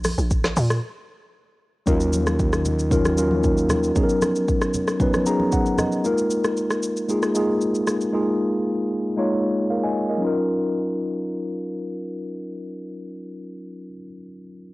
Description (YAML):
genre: amapiano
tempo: 115 BPM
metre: 4/4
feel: straight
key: Eb minor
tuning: A4 = 440 Hz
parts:
  - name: hollow log drum bass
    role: bass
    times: 0.0-0.8 s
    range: Bb1 to Bb2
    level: -22 LUFS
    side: equal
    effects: none
  - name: afro-pop drum kit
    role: drums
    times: 0.0-8.1 s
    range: hi-hat, kick drum, rim click, shaker, snare drum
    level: -24 LUFS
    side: equal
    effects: cassette tape
  - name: congas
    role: percussion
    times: 0.0-5.9 s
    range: none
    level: -31 LUFS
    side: right 2 dB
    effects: none
  - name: mellow tine electric piano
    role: accompaniment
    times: 1.9-14.7 s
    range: Gb3 to A#5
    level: -22 LUFS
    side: equal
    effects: medium stereo tremolo, low-pass filter, cassette tape
  - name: fat analog bass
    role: bass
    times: 1.9-3.9 s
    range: Eb2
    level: -24 LUFS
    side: equal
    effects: none
room: digital ambience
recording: home recording on cassette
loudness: -20 LUFS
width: side -20 dB against mid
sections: 0.0-1.9 A section; 1.9-10.2 B section; 10.2-14.4 C section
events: drop 0.0-1.9; break 0.8-1.9; filter sweep on tine electric piano 1.9-10.2; tine electric piano fill 5.0-6.0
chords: 0.0 N.C.; 1.9 Ebm7; 4.0 Bmaj9; 6.0 Bb7sus4; 10.2 Ebm7